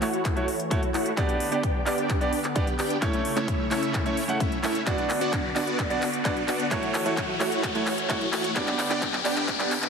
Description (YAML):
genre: EDM, festival progressive house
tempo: 130 BPM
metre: 4/4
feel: straight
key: unclear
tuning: A4 = 440 Hz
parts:
  - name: bright grand piano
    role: accompaniment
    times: 0.0-9.7 s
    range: A3 to F#5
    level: -30 LUFS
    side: right 2 dB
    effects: sidechain pumping, tape echo
  - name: lush unison pad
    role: sustained chords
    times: 0.0-9.9 s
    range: C#3 to D5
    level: -34 LUFS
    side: equal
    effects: chorus, phaser, sidechain pumping
  - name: supersaw chords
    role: riff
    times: 0.0-9.8 s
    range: A3 to G5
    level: -28 LUFS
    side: equal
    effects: phaser, sidechain pumping, low-pass filter, tape echo
  - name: big-room dance drum kit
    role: drums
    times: 0.0-9.9 s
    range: handclaps, hi-hat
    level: -31 LUFS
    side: equal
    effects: overdrive
  - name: riser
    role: sound effects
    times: 1.7-9.9 s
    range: none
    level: -35 LUFS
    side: left 4 dB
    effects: none
  - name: electronic kick drum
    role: drums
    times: 0.2-9.6 s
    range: none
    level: -29 LUFS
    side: left 1 dB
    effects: none
room: moderate digital room reverb, RT60 1.2 s, digital ambience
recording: heavily compressed radio sound, multiband compression, high-pass filter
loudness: -23 LUFS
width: side -6 dB against mid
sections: 0.0-9.9 A section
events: build-up 0.0-9.9; drum fill 0.0-9.9; filter sweep on supersaw synth 0.0-9.9; filter sweep 0.0-9.9; riser 1.7-9.9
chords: 0.0 F#m7; 1.2 G; 3.0 A; 4.9 Bm; 6.7 F#m7; 8.6 G